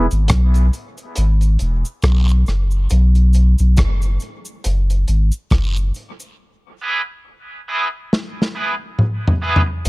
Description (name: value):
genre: dub reggae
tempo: 69 BPM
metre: 4/4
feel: swing 57% on 16ths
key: unclear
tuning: A4 = 440 Hz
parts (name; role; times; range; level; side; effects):
- electric guitar at the edge of break-up; accompaniment; 0.0-0.1, 6.8-9.7 s; B3 to B4; -22 LUFS; right 1 dB; tremolo, high-pass filter, low-pass filter, dub echo
- warm sub bass; bass; 0.0-9.9 s; E1 to B1; -14 LUFS; equal; none
- crunchy breakbeat drum kit; drums; 0.1-9.9 s; hi-hat, kick drum, rim click, snare drum, toms; -19 LUFS; equal; none
- cabasa and guiro; percussion; 0.1-9.9 s; none; -35 LUFS; equal; high-pass filter on perc, dub echo
room: small room reverb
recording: dry, close 1970s-style studio recording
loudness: -15 LUFS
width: side -22 dB against mid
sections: 0.0-9.9 A section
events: break 0.0-6.4, 6.4-9.9; filter sweep on clean electric guitar 0.0-9.9; filter sweep 0.0-9.9; drum fill 8.1-9.9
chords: 0.0 E (rootless); 2.9 B5; 4.6 F#sus2; 6.4 E